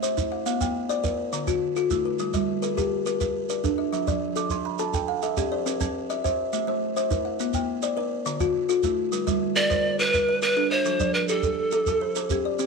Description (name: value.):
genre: southern african traditional, mbira-style interlocking cycle.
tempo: 138 BPM (dotted quarters).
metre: 12/8.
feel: straight.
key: G equiheptatonic.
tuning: A4 = 445 Hz.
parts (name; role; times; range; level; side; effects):
buzzing kalimba; arpeggios; 0.0-12.7 s; D3 to D6; -28 LUFS; right 13 dB; none.
kalimba; arpeggios; 0.0-12.7 s; D3 to A5-29c; -27 LUFS; left 11 dB; none.
shekere; percussion; 0.0-12.7 s; none; -31 LUFS; right 4 dB; none.
breathy bright pan flute; melody; 9.6-12.4 s; A4-25c to D5; -22 LUFS; right 1 dB; none.
room: moderate echo chamber reverb, RT60 1.5 s, studio ambience.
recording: 1960s-style stereo with parts hard left and right.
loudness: -23 LUFS.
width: side -4 dB against mid.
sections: 0.0-9.1 A section; 9.1-12.7 B section.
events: kalimba fill 4.2-5.7.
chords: 0.5 Bb; 1.3 Dm; 2.2 Gm; 3.9 F; 5.7 C; 6.5 Am; 7.4 Bb; 8.3 Dm; 9.1 Gm; 10.9 F.